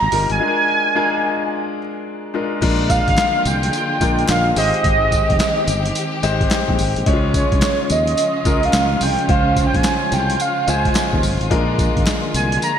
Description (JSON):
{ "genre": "R&B, new jack swing", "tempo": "108 BPM", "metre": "4/4", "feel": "swing 64% on 16ths", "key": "unclear", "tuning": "A4 = 445 Hz", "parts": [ { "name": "warm velvety synth lead", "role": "melody", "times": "0.0-12.8 s", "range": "Db5 to Bb5", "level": "-19 LUFS", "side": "right 2 dB", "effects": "chorus" }, { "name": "clear concert grand piano", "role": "accompaniment", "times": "0.0-12.8 s", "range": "G3 to Db5", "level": "-22 LUFS", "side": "left 4 dB", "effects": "none" }, { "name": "sustaining fretless electric bass", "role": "bass", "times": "0.0-12.6 s", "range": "F1 to Eb2", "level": "-21 LUFS", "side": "equal", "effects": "none" }, { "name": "boom bap sampler-style drum kit", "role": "drums", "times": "0.1-12.8 s", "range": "crash cymbal, handclaps, hi-hat, kick drum, snare drum, tambourine", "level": "-20 LUFS", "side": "equal", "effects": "gated reverb" }, { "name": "warm studio string section", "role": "sustained chords", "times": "2.6-12.8 s", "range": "Db3 to G4", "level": "-26 LUFS", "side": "equal", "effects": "none" }, { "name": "group handclap", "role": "percussion", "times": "3.2-12.2 s", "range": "none", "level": "-37 LUFS", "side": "left 3 dB", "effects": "none" } ], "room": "moderate lush hall reverb, RT60 2.1 s", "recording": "bright 1980s-style digital production", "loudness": "-15 LUFS", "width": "side -8 dB against mid", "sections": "0.0-2.6 A section; 2.6-12.8 B section", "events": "break 0.4-2.6", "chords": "0.4 Bb7; 4.6 Abmaj7; 7.1 Dbmaj7; 11.5 Bb7" }